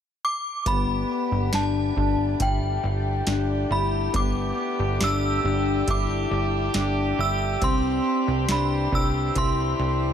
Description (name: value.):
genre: dream pop.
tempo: 69 BPM.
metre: 4/4.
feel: straight.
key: G major.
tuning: A4 = 440 Hz.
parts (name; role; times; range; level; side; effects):
synth chime; melody; 0.2-10.1 s; G5 to E6; -28 LUFS; right 1 dB; ensemble chorus, tremolo, digital delay.
muted French horn section; sustained chords; 0.7-10.1 s; D3 to G4; -30 LUFS; right 2 dB; stereo widening.
mellow electric guitar; arpeggios; 0.7-10.1 s; B3 to E4; -27 LUFS; left 4 dB; lush chorus, digital delay.
plucky analog bass; bass; 0.7-10.1 s; G1 to C2; -26 LUFS; right 1 dB; none.
booming analog drum machine; drums; 0.7-9.6 s; hi-hat, kick drum, snare drum; -27 LUFS; right 1 dB; overdrive.
room: light reverb.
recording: none.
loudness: -21 LUFS.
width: side -8 dB against mid.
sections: 0.7-10.1 A section.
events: none.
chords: 0.0 N.C.; 0.7 Gadd9; 7.6 C.